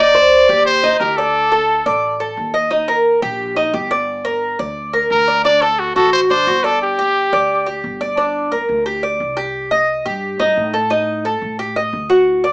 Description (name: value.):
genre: latin, Cuban son and guajira.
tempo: 176 BPM.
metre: 4/4.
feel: straight.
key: G minor, G harmonic minor from 8.2 s.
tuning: A4 = 440 Hz.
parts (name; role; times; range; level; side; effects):
bright trumpet; melody; 0.0-2.2, 5.1-7.8 s; F#4 to D5; -13 LUFS; equal; none.
Cuban tres; arpeggios; 0.0-12.5 s; D4 to Eb5; -15 LUFS; equal; none.
upright bass; bass; 0.0-12.5 s; G1 to A2; -30 LUFS; equal; none.
room: moderate studio ambience, RT60 0.5 s.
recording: heard from further back in the room, small speaker sound.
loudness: -13 LUFS.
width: side -25 dB against mid.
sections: 0.0-8.2 A section; 8.2-12.5 B section.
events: none.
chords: 0.0 Cm/Eb; 1.3 D5; 2.7 Ebmaj7; 4.1 Gm; 5.4 D7; 6.8 G5; 8.2 Gm; 9.5 Cm; 10.9 D.